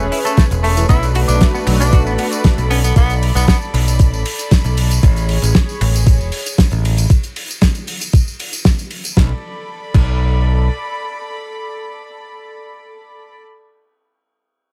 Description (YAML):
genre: nu-disco, nu disco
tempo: 116 BPM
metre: 4/4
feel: straight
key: B dorian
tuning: A4 = 440 Hz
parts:
  - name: warm analog pad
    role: accompaniment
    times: 0.0-2.4 s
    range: A3 to B4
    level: -24 LUFS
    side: equal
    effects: chorus
  - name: rich symphonic string section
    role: sustained chords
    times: 0.0-13.4 s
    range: G#4 to B5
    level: -30 LUFS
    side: equal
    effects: sidechain pumping
  - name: semi-hollow electric guitar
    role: riff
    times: 0.0-2.8 s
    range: E3 to A4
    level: -26 LUFS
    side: equal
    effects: subtle chorus
  - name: modern bright picked electric bass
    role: bass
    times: 0.0-10.7 s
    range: E1 to B1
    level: -18 LUFS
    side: equal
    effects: none
  - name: damped 70s drum kit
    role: drums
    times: 0.0-10.1 s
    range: crash cymbal, finger snaps, hi-hat, ride cymbal, snare drum, tambourine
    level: -23 LUFS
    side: equal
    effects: none
  - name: edgy tenor saxophone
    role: melody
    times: 0.2-3.6 s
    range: A3 to E4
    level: -24 LUFS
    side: equal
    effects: digital delay
  - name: electronic kick drum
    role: drums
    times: 0.4-10.1 s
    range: none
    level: -14 LUFS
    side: equal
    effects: overdrive
room: small room ambience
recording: none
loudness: -15 LUFS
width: mono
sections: 0.0-9.2 A section; 9.2-13.3 B section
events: drop 0.0-9.2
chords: 0.0 Amaj9; 0.9 Bm7; 5.0 Amaj9; 9.2 Bm7